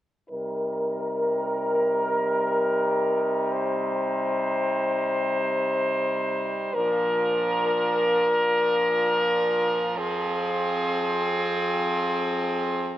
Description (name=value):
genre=hip hop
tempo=free time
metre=none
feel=none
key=C minor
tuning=A4 = 444 Hz
part: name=muted French horn section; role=sustained chords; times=0.3-13.0 s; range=F2 to C5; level=-22 LUFS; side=equal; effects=low-pass filter
room=moderate lush hall reverb, RT60 2.5 s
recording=none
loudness=-22 LUFS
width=side -13 dB against mid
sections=0.3-13.0 A section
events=filter sweep on French horn section 0.3-13.0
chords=0.3 Cm7; 6.7 Bb; 10.0 Fm